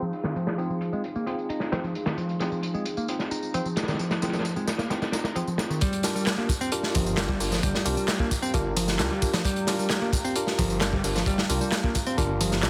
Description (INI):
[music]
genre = breakbeat, breaks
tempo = 132 BPM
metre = 4/4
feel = straight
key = G phrygian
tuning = A4 = 436 Hz
[part]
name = dark analog pad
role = sustained chords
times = 0.0-12.7 s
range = Eb4 to Bb5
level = -38 LUFS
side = equal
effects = chorus, sidechain pumping
[part]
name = modern bright picked electric bass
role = riff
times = 0.0-12.7 s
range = Eb3 to Eb4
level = -32 LUFS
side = equal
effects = low-pass filter, delay
[part]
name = barky tine electric piano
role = stabs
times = 0.0-12.7 s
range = C4 to C5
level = -34 LUFS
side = equal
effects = delay
[part]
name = punchy analog drum machine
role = drums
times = 0.0-12.7 s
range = handclaps, hi-hat, tambourine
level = -36 LUFS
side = equal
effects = none
[part]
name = crunchy breakbeat drum kit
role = drums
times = 0.1-12.7 s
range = hi-hat, kick drum, snare drum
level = -31 LUFS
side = equal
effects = low-pass filter on kick, low-pass filter on hats, low-pass filter on snare, low-pass filter on room
[part]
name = phased detuned saw bass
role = bass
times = 7.0-12.7 s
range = G1 to D2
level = -32 LUFS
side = equal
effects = phaser
[sound]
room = light reverb, small room reverb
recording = heavily compressed radio sound, multiband compression, low-pass filter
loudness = -27 LUFS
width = mono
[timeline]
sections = 0.0-5.8 A section; 5.8-12.7 B section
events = filter sweep 0.0-5.8; drop 5.8-12.7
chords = 0.0 Fm7; 5.8 Gm7